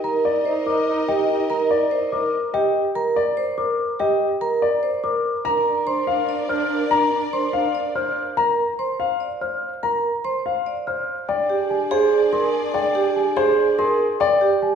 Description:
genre	classical, minimalist pattern music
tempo	288 BPM (eighths)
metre	7/8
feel	straight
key	unclear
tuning	A4 = 443 Hz
part	clear French horn	second line	0.0-2.3, 5.4-8.1, 11.3-14.0 s	D4 to Eb4	-29 LUFS	right 3 dB	none
part	warm symphonic string section	sustained chords	0.0-2.3, 5.5-8.1, 11.3-14.0 s	Ab4 to Eb5	-30 LUFS	left 1 dB	none
part	celesta	arpeggios	0.0-14.8 s	G5 to F6	-26 LUFS	left 2 dB	none
part	vibraphone with medium hard mallets	arpeggios	0.0-14.7 s	G4 to D5	-23 LUFS	right 5 dB	none
part	warm grand piano	melody	0.3-14.5 s	Ab4 to Bb5	-23 LUFS	left 5 dB	none
room	wet recital hall reverb, RT60 1.4 s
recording	heard from further back in the room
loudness	-18 LUFS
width	side -7 dB against mid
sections	0.0-11.3 A section; 11.3-14.8 B section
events	none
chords	0.0 Cm7; 5.5 Bb; 11.3 Bb13/D

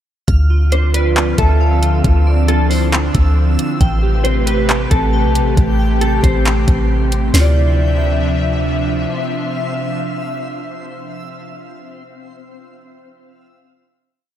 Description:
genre	hip hop, atmospheric cloud-rap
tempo	136 BPM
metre	4/4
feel	half-time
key	D dorian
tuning	A4 = 438 Hz
part	airy breathy pad	sustained chords	0.5-11.5 s	C3 to E5	-20 LUFS	equal	chorus, sidechain pumping
part	glassy digital keys	arpeggios	0.3-11.6 s	C4 to F6	-27 LUFS	equal	chorus, ping-pong delay
part	soft 808-style bass	bass	0.3-9.1 s	A1 to D2	-14 LUFS	equal	none
part	smooth R&B drum kit	drums	0.3-7.4 s	handclaps, hi-hat, kick drum, snare drum	-17 LUFS	equal	none
part	backwards swelling texture	texture	1.2-11.5 s	C4 to E6	-29 LUFS	left 1 dB	built-in reverb, wide subtle chorus
part	mellow electric guitar	melody	0.7-8.6 s	A4 to D5	-22 LUFS	equal	analog chorus, ping-pong delay
room	light reverb, digital ambience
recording	none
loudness	-13 LUFS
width	side -11 dB against mid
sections	0.3-7.3 verse; 7.3-10.9 final chord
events	none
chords	0.3 Dm9; 3.8 Am9; 7.3 Dm9

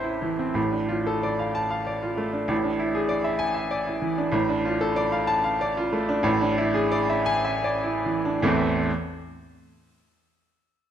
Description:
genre	classical, romantic character piece for solo piano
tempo	71-100 BPM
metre	3/4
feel	rubato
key	A minor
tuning	A4 = 437 Hz
part	bright baby grand piano	solo	0.0-8.9 s	A1 to A5	-22 LUFS	equal	none
room	moderate recital hall reverb, RT60 1.5 s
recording	lossy compression artefacts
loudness	-22 LUFS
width	side -9 dB against mid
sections	0.6-8.4 A section; 8.4-10.4 B section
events	slowing down 3.4-8.4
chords	0.0 Am; 0.6 Dm/A; 2.5 E7/A; 4.3 Dm/A; 6.3 E7/A; 8.4 Am

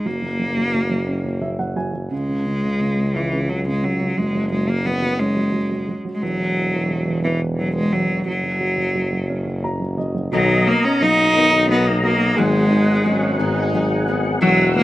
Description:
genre	six-eight pop ballad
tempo	58 BPM (dotted quarters)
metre	6/8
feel	straight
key	B major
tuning	A4 = 440 Hz
part	clear cello	melody	0.0-14.8 s	E3 to D#4	-19 LUFS	equal	none
part	dark grand piano	accompaniment	0.0-14.8 s	B2 to A#5	-26 LUFS	right 3 dB	none
part	warm tuba	bass	0.1-14.8 s	E1 to C#2	-24 LUFS	equal	none
part	tonewheel organ	sustained chords	10.3-14.8 s	F#4 to E6	-24 LUFS	left 1 dB	overdrive, chorus vibrato, slow rotary speaker
part	fingerpicked steel-string acoustic guitar	arpeggios	10.3-14.8 s	G#2 to B4	-23 LUFS	left 4 dB	none
part	warm French horn section	second line	13.1-14.3 s	C#4 to D#4	-27 LUFS	right 2 dB	slapback echo
room	light reverb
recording	recorded outdoors, with no room sound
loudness	-17 LUFS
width	side -16 dB against mid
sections	0.0-10.3 A section; 10.3-14.8 B section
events	grand piano fill 1.1-2.1, 9.3-10.3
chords	0.1 F#; 2.1 C#5; 4.2 F#sus2; 6.2 E5; 8.3 F#5; 10.3 Bmaj7; 12.4 G#m7

